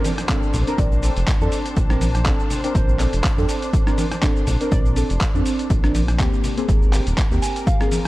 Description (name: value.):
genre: deep house.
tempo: 122 BPM.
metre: 4/4.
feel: swing 55% on 16ths.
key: Bb major.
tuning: A4 = 440 Hz.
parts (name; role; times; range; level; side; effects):
deep mellow chord stab; stabs; 0.0-8.0 s; Bb3 to Bb4; -25 LUFS; equal; chorus, phaser, cassette tape, sidechain pumping, analog delay.
dusty soul sampler-style drum kit; drums; 0.0-8.1 s; cabasa, handclaps, hi-hat, rim click; -28 LUFS; equal; overdrive.
open jazz drum kit; drums; 0.0-8.0 s; hi-hat, snare drum; -43 LUFS; left 2 dB; none.
congas; percussion; 0.0-8.0 s; none; -28 LUFS; equal; overdrive.
downlifter; sound effects; 0.0-2.8 s; none; -39 LUFS; right 1 dB; none.
muted studio string section; texture; 0.0-8.1 s; C4 to A5; -32 LUFS; left 2 dB; sidechain pumping.
electronic kick drum; drums; 0.3-7.8 s; none; -20 LUFS; equal; none.
round analog bass; bass; 0.5-7.4 s; Eb1 to F2; -21 LUFS; equal; sidechain pumping.
soft round pluck; melody; 0.8-5.0 s; C5 to D5; -35 LUFS; right 2 dB; lush chorus, analog delay.
soft synth bell; melody; 7.4-7.8 s; F5 to Ab5; -28 LUFS; right 2 dB; chorus, analog delay.
room: digital ambience.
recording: dark, warm production.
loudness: -17 LUFS.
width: side -18 dB against mid.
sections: 0.0-8.1 A section.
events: none.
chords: 0.0 Bbmaj9; 6.4 Abmaj9.